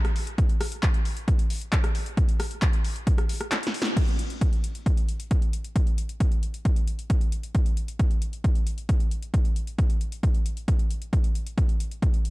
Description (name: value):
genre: trance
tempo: 134 BPM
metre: 4/4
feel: straight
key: none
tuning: none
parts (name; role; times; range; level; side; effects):
- punchy analog drum machine; drums; 0.0-12.3 s; crash cymbal, handclaps, hi-hat, rim click, snare drum; -32 LUFS; left 1 dB; overdrive
- electronic kick drum; drums; 0.4-12.1 s; none; -23 LUFS; equal; overdrive
room: little or no reverb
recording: dark, warm production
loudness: -23 LUFS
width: side -20 dB against mid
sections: 0.0-4.0 A section; 4.0-12.3 B section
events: kick drops out 3.5-4.0; drum fill 3.5-4.0; band accent 3.8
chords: none